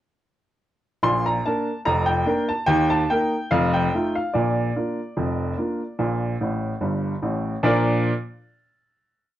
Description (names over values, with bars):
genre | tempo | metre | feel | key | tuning
ragtime piano | 73 BPM | 2/4 | swing 54% on 16ths | Bb major | A4 = 440 Hz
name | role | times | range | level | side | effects
clear upright piano | solo | 1.0-8.1 s | F1 to C6 | -20 LUFS | equal | none
room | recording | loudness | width
light reverb | worn, warbling old tape, cassette tape, warbly pitch drift | -20 LUFS | side -13 dB against mid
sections
1.0-7.6 A section; 7.6-9.3 final chord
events
upright piano fill 6.4-7.6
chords
1.0 Bb; 2.7 Eb; 3.5 F7; 4.3 Bb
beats
| 1.05 1.87 | 2.69 3.51 | 4.34 5.17 | 5.99 6.82 | 7.64